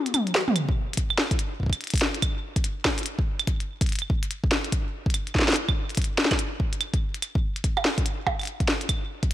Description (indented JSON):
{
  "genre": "IDM",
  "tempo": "144 BPM",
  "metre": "4/4",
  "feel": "swing 62% on 16ths",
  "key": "none",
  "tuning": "none",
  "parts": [
    { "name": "glitchy drum kit", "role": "drums", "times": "0.1-9.3 s", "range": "claves, hi-hat, percussion blips, snare drum, toms", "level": "-25 LUFS", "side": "equal", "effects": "tape echo" },
    { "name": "electronic kick drum", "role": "drums", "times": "0.7-9.3 s", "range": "none", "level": "-26 LUFS", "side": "equal", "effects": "none" }
  ],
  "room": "light reverb, digital ambience",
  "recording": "none",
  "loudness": "-23 LUFS",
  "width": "side -13 dB against mid",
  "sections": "0.0-9.3 A section",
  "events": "break 0.0-0.6; drum fill 0.0-0.6",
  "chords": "none"
}